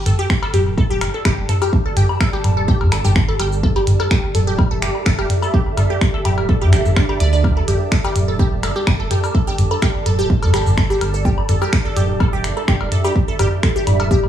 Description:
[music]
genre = minimal techno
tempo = 126 BPM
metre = 4/4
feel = swing 53% on 16ths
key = unclear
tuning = A4 = 441 Hz
[part]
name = flickering grainy texture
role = texture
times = 0.6-14.3 s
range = A4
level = -31 LUFS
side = right 2 dB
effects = built-in reverb, sidechain pumping
[part]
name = granular cloud pad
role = texture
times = 0.7-14.3 s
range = G4 to A5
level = -26 LUFS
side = right 1 dB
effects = built-in reverb, ensemble chorus, sidechain pumping
[part]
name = resonant blip pluck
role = riff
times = 0.1-14.1 s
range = D4 to D5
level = -23 LUFS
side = equal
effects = phaser, sidechain pumping, analog delay
[part]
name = saturated sub bass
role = bass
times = 0.1-14.3 s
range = D1 to G2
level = -20 LUFS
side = right 1 dB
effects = sidechain pumping
[part]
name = minimal click drum kit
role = drums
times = 0.1-14.0 s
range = cabasa, finger snaps, hi-hat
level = -26 LUFS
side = equal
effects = small room ambience
[part]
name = electronic toms, cowbell and woodblock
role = percussion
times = 0.1-14.3 s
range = none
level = -21 LUFS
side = left 1 dB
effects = overdrive, small room ambience, tape echo
[part]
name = electronic kick drum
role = drums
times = 0.3-14.2 s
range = none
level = -17 LUFS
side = equal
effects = small room ambience
[sound]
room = light reverb, digital ambience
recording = small room ambience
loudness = -14 LUFS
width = side -10 dB against mid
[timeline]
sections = 0.0-14.3 A section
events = none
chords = 0.0 G5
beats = 0.30 0.78 1.25 | 1.73 2.20 2.68 3.16 | 3.63 4.11 4.58 5.06 | 5.54 6.01 6.49 6.97 | 7.44 7.92 8.39 8.87 | 9.35 9.82 10.30 10.78 | 11.25 11.73 12.20 12.68 | 13.16 13.63 14.11

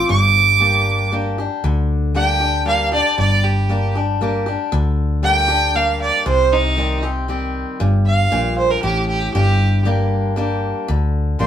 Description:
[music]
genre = honky-tonk and classic country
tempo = 117 BPM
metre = 3/4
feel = straight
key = G minor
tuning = A4 = 440 Hz
[part]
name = clear fiddle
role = melody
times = 0.0-11.5 s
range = Eb4 to D6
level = -17 LUFS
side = right 4 dB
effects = none
[part]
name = picked swing-style acoustic guitar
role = accompaniment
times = 0.0-11.5 s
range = G2 to G4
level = -22 LUFS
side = left 3 dB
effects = none
[part]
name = hollow-body short-scale picked electric bass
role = bass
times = 0.0-11.5 s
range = G1 to D2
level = -18 LUFS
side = equal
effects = none
[sound]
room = moderate studio reverb, RT60 0.6 s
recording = band playing live in one room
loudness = -15 LUFS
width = side -10 dB against mid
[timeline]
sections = 0.0-11.5 A section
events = fiddle solo 0.0-11.5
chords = 0.1 Gm; 6.3 Cm; 9.3 Gm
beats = | 0.10 0.61 1.12 | 1.64 2.15 2.67 | 3.18 3.70 4.21 | 4.72 5.24 5.75 | 6.27 6.78 7.29 | 7.81 8.32 8.84 | 9.35 9.86 10.38 | 10.89 11.41

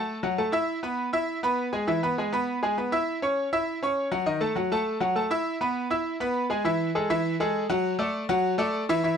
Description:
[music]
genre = latin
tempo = 201 BPM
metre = 4/4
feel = straight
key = A major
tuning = A4 = 439 Hz
[part]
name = bright concert grand piano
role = solo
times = 0.0-9.2 s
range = D#3 to E6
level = -24 LUFS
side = equal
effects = none
[sound]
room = light reverb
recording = close, detailed microphones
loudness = -24 LUFS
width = side -7 dB against mid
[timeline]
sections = 0.0-6.7 A section; 6.7-9.2 B section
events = none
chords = 0.0 D (rootless); 0.7 E; 3.1 C#madd11; 4.3 D#dim; 5.5 E; 6.7 A5; 7.8 D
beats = 0.09 0.38 | 0.68 0.98 1.28 1.58 | 1.88 2.18 2.48 2.78 | 3.07 3.37 3.67 3.97 | 4.27 4.57 4.87 5.16 | 5.46 5.76 6.06 6.36 | 6.65 6.95 7.25 7.54 | 7.84 8.14 8.44 8.73 | 9.03

